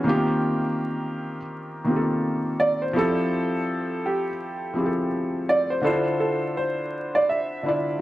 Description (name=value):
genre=hip hop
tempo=83 BPM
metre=4/4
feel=swing 59% on 16ths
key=unclear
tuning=A4 = 440 Hz
part: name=felt-muted upright piano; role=accompaniment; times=0.0-8.0 s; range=D3 to D5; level=-24 LUFS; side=equal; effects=cassette tape, low-pass filter
part: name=warm upright piano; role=melody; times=2.6-8.0 s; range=G4 to E5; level=-25 LUFS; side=right 1 dB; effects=low-pass filter, analog delay
room=moderate spring reverb, RT60 1.0 s, small room ambience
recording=vinyl crackle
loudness=-22 LUFS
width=side -15 dB against mid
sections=0.0-8.0 A section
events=none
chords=0.1 Eb69; 3.0 Fmaj9; 5.8 Dm9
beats=| 0.06 0.79 1.51 2.23 | 2.95 3.68 4.40 5.12 | 5.85 6.57 7.29